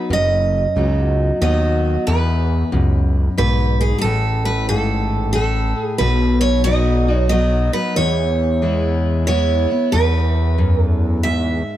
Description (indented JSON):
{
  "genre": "honky-tonk and classic country",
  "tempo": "92 BPM",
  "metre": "3/4",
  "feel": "swing 65% on 8ths",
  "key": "E major",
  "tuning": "A4 = 437 Hz",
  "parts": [
    { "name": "picked steel-string acoustic guitar", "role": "melody", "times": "0.0-11.8 s", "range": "G#4 to E5", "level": "-21 LUFS", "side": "right 3 dB", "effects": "none" },
    { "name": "picked steel-string acoustic guitar", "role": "accompaniment", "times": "0.0-11.8 s", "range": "E2 to F#4", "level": "-21 LUFS", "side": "left 2 dB", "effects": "none" },
    { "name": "fat analog bass", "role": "bass", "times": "0.1-11.6 s", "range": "F#1 to E2", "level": "-18 LUFS", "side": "equal", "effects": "none" }
  ],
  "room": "light reverb",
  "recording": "heard from further back in the room",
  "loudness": "-15 LUFS",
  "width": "side -12 dB against mid",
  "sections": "0.0-2.1 A section; 2.1-11.8 A section",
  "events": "none",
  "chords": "0.0 B; 2.1 E; 4.0 N.C.; 6.0 B; 8.0 E",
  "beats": "| 0.10 0.76 1.42 | 2.07 2.73 3.38 | 4.04 4.69 5.35 | 6.00 6.66 7.31 | 7.97 8.62 9.28 | 9.93 10.58 11.24"
}